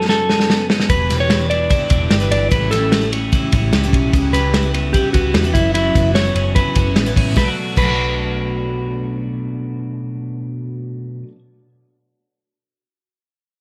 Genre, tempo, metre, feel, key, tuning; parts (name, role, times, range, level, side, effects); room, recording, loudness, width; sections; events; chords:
jangly indie pop; 148 BPM; 4/4; straight; B minor; A4 = 440 Hz
mellow electric guitar; melody; 0.0-10.7 s; E4 to D5; -23 LUFS; equal
twelve-string electric guitar; arpeggios; 0.0-11.4 s; E2 to F#4; -26 LUFS; equal
vintage drum kit; drums; 0.1-7.9 s; crash cymbal, hi-hat, kick drum, ride cymbal, snare drum; -20 LUFS; equal
picked twelve-string acoustic guitar; accompaniment; 0.9-11.3 s; F#2 to B4; -28 LUFS; equal
vintage muted picked electric bass; bass; 0.9-10.7 s; E1 to E2; -23 LUFS; equal
light reverb; lossy compression artefacts; -17 LUFS; mono
0.0-7.4 A section; 7.4-10.6 B section
drum fill 0.1-0.9
0.0 F#sus4; 0.9 Em7; 2.5 A7; 4.1 C#m7b5; 5.5 F#7sus4; 7.4 Bm7